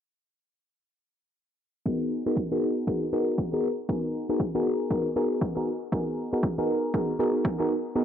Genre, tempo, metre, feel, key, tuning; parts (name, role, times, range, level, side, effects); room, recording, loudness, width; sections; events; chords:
deep house; 118 BPM; 4/4; swing 59% on 16ths; G# minor; A4 = 440 Hz
mellow FM electric piano; stabs; 1.9-8.0 s; B3 to A#4; -26 LUFS; equal; chorus, phaser, sidechain pumping, low-pass filter, dub echo
electronic kick drum; drums; 1.9-7.6 s; -30 LUFS; right 1 dB; high-pass filter on kick, high-pass filter on room
moderate lush hall reverb, RT60 1.6 s; low-pass filter; -25 LUFS; side -9 dB against mid
1.9-8.0 A section
filter sweep 1.9-8.0
1.9 G#m9